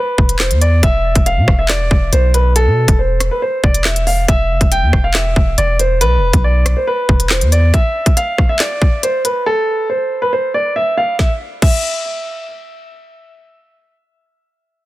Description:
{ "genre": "hip hop, drill", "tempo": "139 BPM", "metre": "4/4", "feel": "half-time", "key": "unclear", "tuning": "A4 = 439 Hz", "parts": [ { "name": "dark baby grand piano", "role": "melody", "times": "0.0-12.4 s", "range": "A4 to G5", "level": "-17 LUFS", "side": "equal", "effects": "low-pass filter, tape echo" }, { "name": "long sustained 808-style bass", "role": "bass", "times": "0.2-7.7 s", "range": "E1 to B2", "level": "-14 LUFS", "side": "equal", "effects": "none" }, { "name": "drill drum kit", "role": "drums", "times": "0.2-11.7 s", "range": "crash cymbal, handclaps, hi-hat, kick drum, rim click, snare drum", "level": "-14 LUFS", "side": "equal", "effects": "none" } ], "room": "little or no reverb", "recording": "dense, heavily limited modern master", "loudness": "-12 LUFS", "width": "side -17 dB against mid", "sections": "0.0-11.2 A section; 11.2-14.6 B section", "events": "drums muted 9.5-11.2", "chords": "0.0 E5; 0.8 Dsus2/E (rootless); 4.3 E5; 7.7 N.C." }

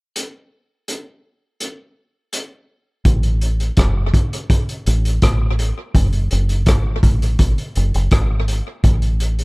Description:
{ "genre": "lovers rock reggae", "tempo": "83 BPM", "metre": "4/4", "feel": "straight", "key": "F# minor", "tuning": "A4 = 440 Hz", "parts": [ { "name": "crunchy breakbeat drum kit", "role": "drums", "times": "0.2-9.4 s", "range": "hi-hat, kick drum, rim click", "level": "-17 LUFS", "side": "equal", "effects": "none" }, { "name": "deep dub fingered electric bass", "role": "bass", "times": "3.1-9.4 s", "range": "F#1 to A1", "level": "-17 LUFS", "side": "equal", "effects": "none" } ], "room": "little or no reverb", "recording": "dark, warm production", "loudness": "-15 LUFS", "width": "side -28 dB against mid", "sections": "0.2-3.1 A section; 3.1-9.4 B section", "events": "none", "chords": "none" }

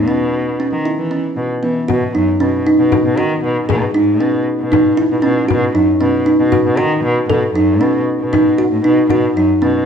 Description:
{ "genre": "contemporary instrumental, chamber music in an uneven meter", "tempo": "233 BPM (eighths)", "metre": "7/8", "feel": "straight", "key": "B mixolydian", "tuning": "A4 = 438 Hz", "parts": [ { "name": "warm cello", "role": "bass", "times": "0.0-9.8 s", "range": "F#2 to E3", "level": "-18 LUFS", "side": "left 1 dB", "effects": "none" }, { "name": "kalimba", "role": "arpeggios", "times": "0.1-9.8 s", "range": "B3 to A4", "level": "-14 LUFS", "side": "right 1 dB", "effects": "none" }, { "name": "frame drum", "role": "percussion", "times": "1.9-9.3 s", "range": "none", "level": "-22 LUFS", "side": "left 8 dB", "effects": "none" } ], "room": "light reverb", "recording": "minimal, uncompressed stereo recording", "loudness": "-12 LUFS", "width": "side -7 dB against mid", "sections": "0.0-1.9 A section; 1.9-9.9 B section", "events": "none", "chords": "0.1 Bsus24; 1.9 B/F#; 3.7 C#7sus2; 5.5 B/F#; 7.3 B9; 9.1 Badd9" }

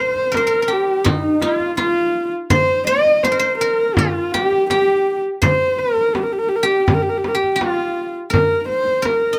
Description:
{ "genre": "mongolian traditional, Mongolian folk", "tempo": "83 BPM", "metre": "4/4", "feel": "straight", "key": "Bb zhi mode", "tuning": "A4 = 435 Hz", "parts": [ { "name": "dark horsehead fiddle", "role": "melody", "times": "0.0-9.4 s", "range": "Eb4 to Eb5", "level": "-20 LUFS", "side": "equal", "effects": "plate reverb" }, { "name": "guzheng", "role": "second line", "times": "0.0-9.4 s", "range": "Eb4 to Eb5", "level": "-24 LUFS", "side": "equal", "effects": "none" }, { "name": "frame drum", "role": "percussion", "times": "0.2-9.2 s", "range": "none", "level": "-23 LUFS", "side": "equal", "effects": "none" } ], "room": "moderate small room reverb, RT60 0.5 s", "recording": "none", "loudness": "-18 LUFS", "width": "mono", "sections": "0.0-9.4 A section", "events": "none", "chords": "none" }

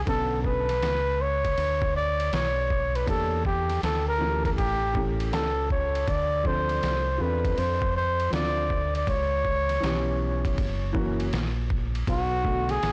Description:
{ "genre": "hip hop, jazz-hop", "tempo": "80 BPM", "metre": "4/4", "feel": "swing 66% on 16ths", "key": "unclear", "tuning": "A4 = 441 Hz", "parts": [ { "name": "fingered electric bass", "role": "bass", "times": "0.0-12.9 s", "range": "F#1 to F2", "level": "-32 LUFS", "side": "equal", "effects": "transformer saturation" }, { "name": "breathy flugelhorn", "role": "melody", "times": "0.1-12.9 s", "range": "F#4 to D5", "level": "-29 LUFS", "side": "equal", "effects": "tape echo" }, { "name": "dark concert grand piano", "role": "accompaniment", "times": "0.1-12.8 s", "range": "D3 to A4", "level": "-35 LUFS", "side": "equal", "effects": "none" }, { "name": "trip hop sampler-style drum kit", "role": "drums", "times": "0.1-12.9 s", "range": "hi-hat, kick drum, ride cymbal, snare drum", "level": "-34 LUFS", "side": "equal", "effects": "none" } ], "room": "little or no reverb", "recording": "blown-out, overdriven recording, vinyl crackle, overdrive", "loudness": "-26 LUFS", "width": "mono", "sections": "0.0-12.9 A section", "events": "none", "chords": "0.1 Bm9; 3.1 Em7b5; 4.6 A7; 6.1 Dm7; 9.1 C#m7b5; 10.6 F#7; 12.1 Bm7" }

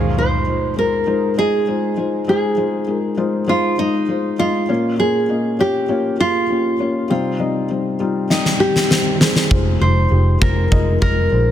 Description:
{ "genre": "piano-driven pop", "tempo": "100 BPM", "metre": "4/4", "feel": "straight", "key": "F minor", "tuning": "A4 = 440 Hz", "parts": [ { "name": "nylon-string guitar", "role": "melody", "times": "0.0-11.5 s", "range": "Eb4 to C5", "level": "-19 LUFS", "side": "right 1 dB", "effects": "none" }, { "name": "felt-muted upright piano", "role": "accompaniment", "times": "0.0-11.5 s", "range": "Bb2 to Eb5", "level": "-20 LUFS", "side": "left 3 dB", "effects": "none" }, { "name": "huge arena drum kit", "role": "drums", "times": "8.3-11.2 s", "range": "kick drum, snare drum", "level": "-18 LUFS", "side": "equal", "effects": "none" }, { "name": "vintage muted picked electric bass", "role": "bass", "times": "9.5-11.5 s", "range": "F1 to Bb1", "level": "-15 LUFS", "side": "equal", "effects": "none" } ], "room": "light reverb, studio ambience", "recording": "dense, heavily limited modern master", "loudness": "-15 LUFS", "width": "side -10 dB against mid", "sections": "0.0-11.5 A section", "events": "drum fill 8.3-9.5", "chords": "0.0 Fm7; 4.7 Bbm; 7.1 Cm; 9.5 Fm7" }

